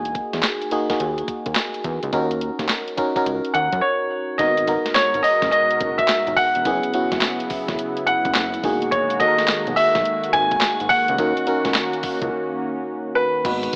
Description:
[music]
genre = R&B, new jack swing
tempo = 106 BPM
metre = 4/4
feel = swing 64% on 16ths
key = G# minor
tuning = A4 = 438 Hz
[part]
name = FM electric piano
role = accompaniment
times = 0.0-13.8 s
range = D#3 to G#5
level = -24 LUFS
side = equal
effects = chorus
[part]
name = fat analog bass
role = bass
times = 0.0-13.7 s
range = E1 to F#2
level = -28 LUFS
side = equal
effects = none
[part]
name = crisp 8-bit digital drum machine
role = drums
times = 0.1-13.8 s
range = crash cymbal, handclaps, hi-hat, kick drum, snare drum, tambourine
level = -24 LUFS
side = equal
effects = none
[part]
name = warm baby grand piano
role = melody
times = 3.5-13.8 s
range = B4 to G#5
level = -19 LUFS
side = equal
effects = none
[part]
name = brassy analog pad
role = sustained chords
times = 4.4-13.8 s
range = B2 to A#4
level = -28 LUFS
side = equal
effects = chorus
[sound]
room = light reverb, digital ambience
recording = AM radio sound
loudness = -18 LUFS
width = side -38 dB against mid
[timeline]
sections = 0.0-4.4 A section; 4.4-13.4 B section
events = break 12.3-13.4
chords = 0.0 Emaj9#11; 2.1 D#m7; 4.4 G#m9; 6.7 F#7sus4; 8.6 Emaj9#11; 11.2 D#m7

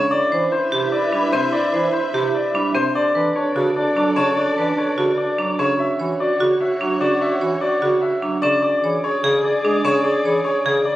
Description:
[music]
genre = classical, minimalist pattern music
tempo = 296 BPM (eighths)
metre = 7/8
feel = straight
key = D lydian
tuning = A4 = 442 Hz
[part]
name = clear concert grand piano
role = melody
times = 0.0-11.0 s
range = C5 to E5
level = -21 LUFS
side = left 2 dB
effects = none
[part]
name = clear bass clarinet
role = accompaniment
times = 0.0-10.8 s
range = C3 to G#3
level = -29 LUFS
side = equal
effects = none
[part]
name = marimba with hard mallets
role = arpeggios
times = 0.0-10.9 s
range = C4 to C#5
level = -21 LUFS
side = right 2 dB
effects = none
[part]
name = mellow clarinet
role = second line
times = 0.1-11.0 s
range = D4 to G#4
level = -24 LUFS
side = equal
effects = none
[part]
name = warm studio string section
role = sustained chords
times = 0.1-11.0 s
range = F#4 to E5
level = -28 LUFS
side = left 1 dB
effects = none
[sound]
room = moderate recital hall reverb, RT60 1.6 s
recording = recorded on a phone in the room, studio reverb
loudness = -17 LUFS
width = side -14 dB against mid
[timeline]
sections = 0.0-11.0 A section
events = none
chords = 0.1 Cmaj7; 3.0 Bm9; 5.8 Dmaj7; 8.6 E7

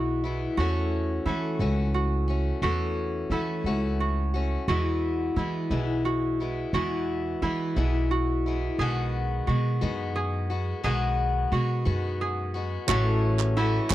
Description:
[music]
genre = indie folk with a building arrangement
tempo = 58 BPM (dotted quarters)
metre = 6/8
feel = straight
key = E major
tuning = A4 = 436 Hz
[part]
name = picked old ladder-braced acoustic guitar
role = accompaniment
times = 0.0-13.9 s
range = E2 to F#4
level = -30 LUFS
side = left 4 dB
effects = none
[part]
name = concert harp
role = arpeggios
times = 0.0-13.9 s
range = E4 to G#4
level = -32 LUFS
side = right 4 dB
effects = none
[part]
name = upright bass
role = bass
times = 0.0-13.9 s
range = A1 to E3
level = -27 LUFS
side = right 1 dB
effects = none
[part]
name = dark upright piano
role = accompaniment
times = 12.9-13.9 s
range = A1 to E5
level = -36 LUFS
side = left 6 dB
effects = none
[part]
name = group handclap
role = percussion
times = 12.9-13.9 s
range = none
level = -30 LUFS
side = right 13 dB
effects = none
[sound]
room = little or no reverb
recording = dry, close 1970s-style studio recording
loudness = -24 LUFS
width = side -14 dB against mid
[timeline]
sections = 0.0-12.9 A section; 12.9-13.9 B section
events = none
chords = 0.0 E; 0.6 F#m7; 4.7 E; 8.8 B6; 12.9 A6

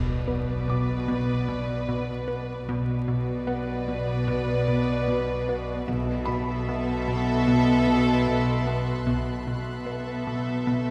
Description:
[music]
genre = cinematic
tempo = 75 BPM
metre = 4/4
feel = straight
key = B minor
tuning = A4 = 440 Hz
[part]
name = warm symphonic violin section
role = melody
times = 0.0-10.9 s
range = D5 to E5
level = -38 LUFS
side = equal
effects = none
[part]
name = rich studio violin section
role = second line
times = 0.0-10.9 s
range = A4 to B4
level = -36 LUFS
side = equal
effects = none
[part]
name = dark symphonic viola section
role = accompaniment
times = 0.0-10.9 s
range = B3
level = -33 LUFS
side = equal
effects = none
[part]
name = plucky analog bass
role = riff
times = 0.0-10.9 s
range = B2 to B3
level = -32 LUFS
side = equal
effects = none
[part]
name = rich symphonic cello section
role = bass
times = 0.0-10.9 s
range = B2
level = -33 LUFS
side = equal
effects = none
[part]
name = warm studio double bass section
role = bass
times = 0.0-10.9 s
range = B1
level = -34 LUFS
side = equal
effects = none
[part]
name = impact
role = sound effects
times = 0.0-2.7 s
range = none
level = -43 LUFS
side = equal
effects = none
[part]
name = felt-muted upright piano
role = texture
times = 0.7-10.9 s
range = F#5 to D6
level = -42 LUFS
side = equal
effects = none
[part]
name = timpani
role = percussion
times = 5.9-7.0 s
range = B2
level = -44 LUFS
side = equal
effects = none
[part]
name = warm symphonic violin section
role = texture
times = 5.9-10.9 s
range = B5 to F#6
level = -44 LUFS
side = equal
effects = none
[sound]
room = wet scoring stage reverb, RT60 1.9 s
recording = heard from further back in the room, vinyl crackle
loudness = -26 LUFS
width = mono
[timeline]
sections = 0.0-10.9 A section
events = impact 0.0-2.7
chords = 0.0 Bm

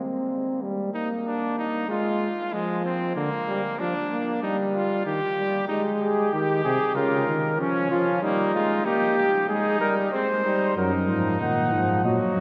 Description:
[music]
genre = classical, imitative canzona for brass ensemble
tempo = 95 BPM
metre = 4/4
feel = straight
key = Ab major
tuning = A4 = 440 Hz
[part]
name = warm trombone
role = accompaniment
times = 0.0-12.4 s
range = C3 to C4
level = -28 LUFS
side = equal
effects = none
[part]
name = clear trumpet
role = second line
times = 0.9-12.4 s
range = Ab3 to G4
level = -30 LUFS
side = equal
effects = none
[part]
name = mellow cornet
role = melody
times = 6.0-12.4 s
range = Db4 to Gb5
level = -27 LUFS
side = equal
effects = none
[part]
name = mellow tuba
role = bass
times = 10.8-12.4 s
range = Gb2 to Bb2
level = -28 LUFS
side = equal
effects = none
[sound]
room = wet cathedral reverb, RT60 6.0 s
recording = none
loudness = -24 LUFS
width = mono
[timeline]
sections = 0.0-10.8 A section; 10.8-12.4 B section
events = none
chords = 0.0 N.C.; 0.6 Eb/G; 1.9 Fm/Ab; 3.2 Bb/D; 4.4 N.C.; 5.7 Ab5; 7.0 Bbm/Db; 8.2 Eb/G; 9.5 Ab; 10.8 Ebm/Gb

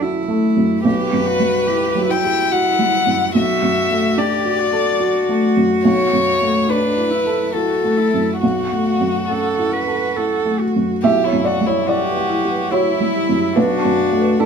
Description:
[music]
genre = neoclassical piano and strings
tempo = 71 BPM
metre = 3/4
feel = rubato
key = unclear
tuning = A4 = 440 Hz
[part]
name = warm cello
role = second line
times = 0.0-14.5 s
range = D4 to B4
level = -21 LUFS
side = right 1 dB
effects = none
[part]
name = felt-muted upright piano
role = accompaniment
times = 0.0-14.5 s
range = B1 to F#5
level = -18 LUFS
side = right 1 dB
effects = none
[part]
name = warm violin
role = melody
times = 0.8-14.5 s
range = D4 to G5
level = -20 LUFS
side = left 4 dB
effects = none
[part]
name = marimba with medium mallets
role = arpeggios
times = 11.0-14.3 s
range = E4 to A5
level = -25 LUFS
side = left 2 dB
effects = none
[sound]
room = moderate studio reverb, RT60 0.7 s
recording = band playing live in one room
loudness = -15 LUFS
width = side -6 dB against mid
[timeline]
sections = 0.0-11.0 A section; 11.0-14.5 A section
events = none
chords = 0.0 F#m7/B; 0.8 Emadd9/B; 3.3 Bm7; 5.8 F#m7/B; 11.0 Emadd9/B; 13.6 Bm7

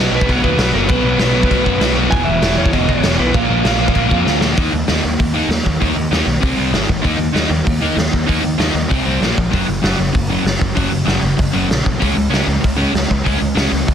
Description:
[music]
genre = punk rock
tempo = 194 BPM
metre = 4/4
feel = straight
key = unclear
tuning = A4 = 441 Hz
[part]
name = lightly driven lead guitar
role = melody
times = 0.0-4.4 s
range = A#4 to G#5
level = -21 LUFS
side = right 2 dB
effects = ping-pong delay
[part]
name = crunchy overdriven guitar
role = riff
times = 0.0-13.9 s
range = E2 to D#4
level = -17 LUFS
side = left 1 dB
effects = none
[part]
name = modern bright picked electric bass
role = bass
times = 0.0-13.9 s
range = E1 to F#2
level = -21 LUFS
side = equal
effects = none
[part]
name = raw garage drum kit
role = drums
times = 0.2-13.9 s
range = crash cymbal, hi-hat, kick drum, snare drum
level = -18 LUFS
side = equal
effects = none
[sound]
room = little or no reverb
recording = dense, heavily limited modern master, lossy compression artefacts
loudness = -13 LUFS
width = side -8 dB against mid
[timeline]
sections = 0.0-4.6 A section; 4.6-13.9 B section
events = drum fill 4.3-4.6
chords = 0.0 B5; 2.1 E5; 3.3 A#; 4.6 D#5; 6.4 C5; 6.7 G#5; 7.0 D#5; 8.9 C5; 9.2 A#5; 9.5 F#5; 12.0 C#5

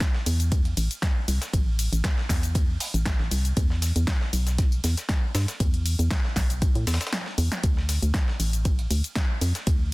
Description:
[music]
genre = deep house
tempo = 118 BPM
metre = 4/4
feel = swing 54% on 16ths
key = unclear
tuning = A4 = 441 Hz
[part]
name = breakbeat sampler-style drum kit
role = drums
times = 0.0-9.8 s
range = hi-hat, snare drum, tambourine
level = -37 LUFS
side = equal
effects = high-pass filter on snare, high-pass filter on perc, high-pass filter on hats
[part]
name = deep house drum kit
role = drums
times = 0.0-9.8 s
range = cabasa, hi-hat, ride cymbal, snare drum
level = -31 LUFS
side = left 1 dB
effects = none
[part]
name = electronic kick drum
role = drums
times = 0.0-9.8 s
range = none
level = -24 LUFS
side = equal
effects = none
[part]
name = organ-like FM bass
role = bass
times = 0.3-9.9 s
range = A1 to A2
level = -24 LUFS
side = equal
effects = tube saturation, sidechain pumping
[sound]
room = little or no reverb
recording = dense, heavily limited modern master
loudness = -22 LUFS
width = side -22 dB against mid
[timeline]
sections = 0.0-9.9 A section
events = break 7.1-7.6; drum fill 7.1-7.6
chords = none

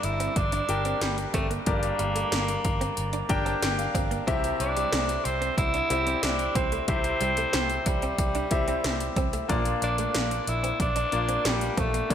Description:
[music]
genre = 1980s-style pop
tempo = 92 BPM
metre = 4/4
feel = straight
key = unclear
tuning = A4 = 441 Hz
[part]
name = breathy tenor saxophone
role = melody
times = 0.0-12.1 s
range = G3 to E4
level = -29 LUFS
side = equal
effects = ping-pong delay
[part]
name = bright grand piano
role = accompaniment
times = 0.0-12.1 s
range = G2 to Bb5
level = -30 LUFS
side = left 2 dB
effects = none
[part]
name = vintage muted fingered electric bass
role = bass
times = 0.0-12.1 s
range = G1 to C2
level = -32 LUFS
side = equal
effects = none
[part]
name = 80s electronic pad drums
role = drums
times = 0.0-12.1 s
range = hi-hat, kick drum, snare drum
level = -29 LUFS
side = equal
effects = overdrive
[part]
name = direct-recorded clean electric guitar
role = riff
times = 0.2-12.0 s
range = G3 to D4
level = -37 LUFS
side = right 4 dB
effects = ensemble chorus
[sound]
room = wet plate reverb, RT60 2.6 s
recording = bright 1980s-style digital production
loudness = -24 LUFS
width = side -9 dB against mid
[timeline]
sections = 0.0-12.1 A section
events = grand piano fill 3.0-4.3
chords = 0.0 Gm; 4.3 C; 9.5 Bb

